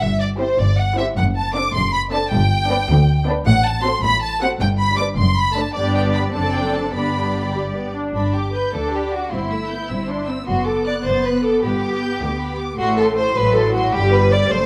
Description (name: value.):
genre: quick classical-period movement for string orchestra.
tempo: 104 BPM (dotted quarters).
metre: 6/8.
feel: straight.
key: G major.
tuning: A4 = 440 Hz.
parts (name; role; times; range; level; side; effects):
rich studio violin section; melody; 0.0-14.7 s; C5 to A6; -26 LUFS; equal; none.
clear symphonic cello section; bass; 0.0-14.7 s; D2 to A2; -26 LUFS; equal; none.
clear symphonic double bass section; bass; 0.0-14.7 s; F#1 to D2; -25 LUFS; equal; none.
warm symphonic violin section; second line; 0.4-14.7 s; D4 to D5; -24 LUFS; equal; none.
dark symphonic viola section; accompaniment; 0.4-14.7 s; F#3 to F#4; -28 LUFS; equal; none.
room: moderate large studio reverb, RT60 1.3 s.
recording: none.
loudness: -19 LUFS.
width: mono.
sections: 0.0-8.2 A section; 8.2-14.7 A section.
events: none.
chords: 0.0 C/G; 1.2 D7/F#; 2.3 G; 3.5 F#dim/A; 4.6 G; 5.2 D/F#; 5.8 G; 6.3 D7/F#; 6.9 G; 9.3 C/G; 10.5 D7/F#; 11.6 G; 12.8 F#dim/A; 13.9 G.